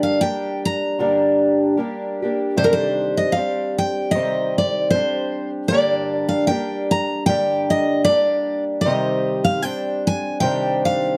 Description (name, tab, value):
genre	acoustic folk duo or small band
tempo	76 BPM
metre	4/4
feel	swing 57% on 8ths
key	C minor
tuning	A4 = 440 Hz
part	picked steel-string acoustic guitar	melody	0.0-11.2 s	Bb4 to Bb5	-23 LUFS	equal	none
part	fingerpicked twelve-string acoustic guitar	accompaniment	0.0-11.2 s	G2 to G4	-22 LUFS	equal	none
room	light reverb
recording	dark, warm production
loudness	-20 LUFS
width	mono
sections	0.0-11.2 A section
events	none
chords	0.0 Gm; 2.6 Cmadd9; 5.7 Gm; 8.9 Cmadd9